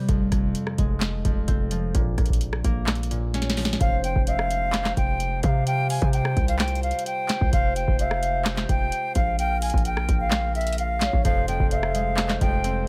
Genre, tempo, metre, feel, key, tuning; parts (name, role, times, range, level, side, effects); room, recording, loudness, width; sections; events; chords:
hip hop, trap; 129 BPM; 4/4; half-time; F harmonic minor; A4 = 440 Hz
concert harp; accompaniment; 0.0-6.2, 11.2-12.9 s; F2 to C5; -32 LUFS; equal
hard-hitting 808-style bass; bass; 0.1-12.9 s; F1 to C3; -29 LUFS; equal
booming analog drum machine; drums; 0.1-12.8 s; handclaps, hi-hat, kick drum, rim click, snare drum; -27 LUFS; equal
reedy jazz flute; melody; 3.8-12.8 s; E5 to Ab5; -29 LUFS; equal; delay
gliding portamento lead; second line; 3.8-12.2 s; C5 to G5; -36 LUFS; equal; chorus, delay
warm woodwind section; sustained chords; 3.8-12.9 s; C3 to C5; -37 LUFS; equal
small room reverb; -24 LUFS; mono
0.0-3.8 A section; 3.8-12.9 B section
drum fill 3.3-3.8
0.1 Fm; 1.9 Bbm; 3.8 Fm; 5.7 Csus4; 7.5 Fm; 9.4 Bbm; 11.2 Fm